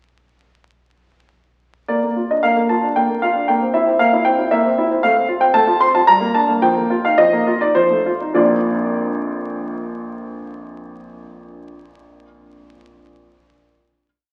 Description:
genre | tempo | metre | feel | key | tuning
classical-period piano sonatina | 99-117 BPM | 3/4 | straight | Bb major | A4 = 440 Hz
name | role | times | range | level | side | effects
warm baby grand piano | solo | 1.9-14.1 s | Bb1 to C6 | -17 LUFS | equal | none
room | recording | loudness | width
wet recital hall reverb, RT60 1.7 s | very old 78 rpm record, vinyl crackle, faint mains hum | -17 LUFS | mono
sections
1.9-8.3 A section; 8.3-11.8 final chord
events
slowing down 4.3-8.3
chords
1.9 Bb; 3.5 C7/Bb; 5.0 F/A; 6.1 Gm; 6.6 F7sus4; 7.8 F7; 8.3 Bb

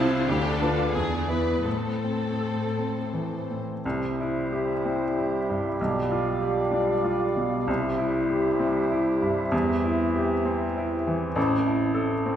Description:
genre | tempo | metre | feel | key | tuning
classical, romantic movement for piano and orchestra | 78-102 BPM | 3/4 | rubato | A minor, C major from 3.8 s | A4 = 442 Hz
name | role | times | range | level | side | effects
clear baby grand piano | melody | 0.0-12.4 s | A1 to C5 | -26 LUFS | equal | none
dark studio violin section | melody | 0.0-3.6 s | C5 to A5 | -39 LUFS | left 3 dB | none
rich chamber violin section | second line | 0.0-3.5 s | F4 to B4 | -32 LUFS | left 2 dB | none
warm studio viola section | accompaniment | 0.0-3.5 s | B3 to E4 | -33 LUFS | right 1 dB | none
rich studio cello section | bass | 0.0-3.6 s | E2 to D3 | -31 LUFS | equal | none
mellow clarinet | second line | 3.8-11.6 s | G4 to A4 | -34 LUFS | equal | none
mellow cor anglais | second line | 3.8-11.6 s | C5 to D5 | -36 LUFS | left 2 dB | none
mellow hollow flute section | second line | 3.8-11.6 s | E5 to A5 | -35 LUFS | equal | none
mellow bassoon | accompaniment | 3.8-11.6 s | E3 to G3 | -33 LUFS | right 2 dB | none
warm French horn section | sustained chords | 3.8-12.4 s | G3 to F4 | -32 LUFS | left 2 dB | none
room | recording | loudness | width
wet scoring stage reverb, RT60 1.7 s | heard from further back in the room | -23 LUFS | side -10 dB against mid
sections
0.0-3.8 A section; 3.8-12.4 B section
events
none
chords
0.3 Bdim/D; 0.9 E7; 1.7 Am; 3.8 C; 5.8 G7/B; 7.7 C; 9.5 C/E; 11.4 Am

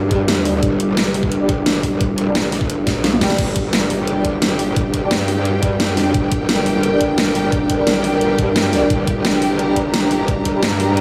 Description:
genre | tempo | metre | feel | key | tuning
dark technical drum and bass | 174 BPM | 4/4 | straight | G minor | A4 = 440 Hz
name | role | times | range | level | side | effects
dark analog pad | sustained chords | 0.0-11.0 s | G3 to Bb4 | -22 LUFS | equal | chorus, sidechain pumping
growl bass | bass | 0.0-11.0 s | F1 to G2 | -24 LUFS | equal | chorus, overdrive, sidechain pumping
dark brass ensemble | stabs | 0.1-10.6 s | G3 to G4 | -28 LUFS | equal | none
dubstep drum kit | drums | 0.1-11.0 s | crash cymbal, hi-hat, snare drum, toms | -23 LUFS | equal | none
electronic kick drum | drums | 0.1-10.5 s | none | -24 LUFS | equal | none
rich studio string section | texture | 3.4-11.0 s | D4 to Bb5 | -27 LUFS | equal | sidechain pumping
room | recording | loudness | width
moderate lush hall reverb, RT60 1.8 s | dreamy mix soaked in reverb, small room ambience | -17 LUFS | mono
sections
0.0-3.4 A section; 3.4-11.0 A section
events
drop 0.0-3.4, 3.4-11.0; drum fill 2.9-3.4; band accent 3.3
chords
0.0 G5

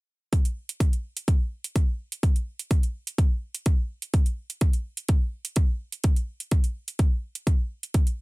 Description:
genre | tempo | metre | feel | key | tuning
filtered disco house | 126 BPM | 4/4 | straight | none | none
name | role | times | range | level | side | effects
electronic hi-hat | drums | 0.3-8.2 s | none | -34 LUFS | right 4 dB | sidechain pumping on hats
electronic kick drum | drums | 0.3-8.0 s | none | -21 LUFS | equal | none
room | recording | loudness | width
little or no reverb | none | -24 LUFS | side -24 dB against mid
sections
0.3-8.2 A section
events
none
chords
none

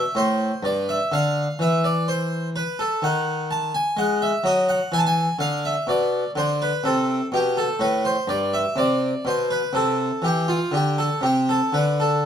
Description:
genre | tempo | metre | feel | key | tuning
classical, baroque-style suite movement for harpsichord | 63 BPM | 4/4 | rubato | A minor | A4 = 440 Hz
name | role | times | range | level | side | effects
harpsichord | solo | 0.0-12.3 s | G2 to A5 | -20 LUFS | equal | none
room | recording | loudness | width
moderate stone room reverb, RT60 1.0 s | none | -20 LUFS | side -8 dB against mid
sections
0.0-12.3 A section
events
none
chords
0.0 C; 1.1 Dm13; 3.0 D#madd11; 4.9 E5; 6.8 Am; 8.8 C; 10.7 F69 (rootless)

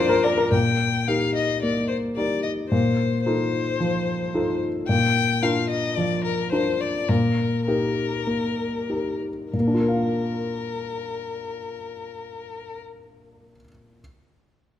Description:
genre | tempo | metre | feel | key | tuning
quick classical-period movement for piano quartet | 91-112 BPM | 4/4 | rubato | Bb major | A4 = 441 Hz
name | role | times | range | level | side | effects
rich violin | melody | 0.0-12.8 s | Bb4 to G5 | -27 LUFS | left 7 dB | none
warm grand piano | accompaniment | 0.0-14.0 s | Bb2 to F5 | -22 LUFS | left 1 dB | none
room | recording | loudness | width
wet recital hall reverb, RT60 1.7 s | none | -21 LUFS | side -11 dB against mid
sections
0.5-9.5 A section; 9.5-12.1 B section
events
slowing down 3.8-9.5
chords
0.0 Bb; 0.5 Eb/Bb; 2.7 F7/Bb; 4.9 Bb; 7.1 Eb/Bb; 9.5 Bb

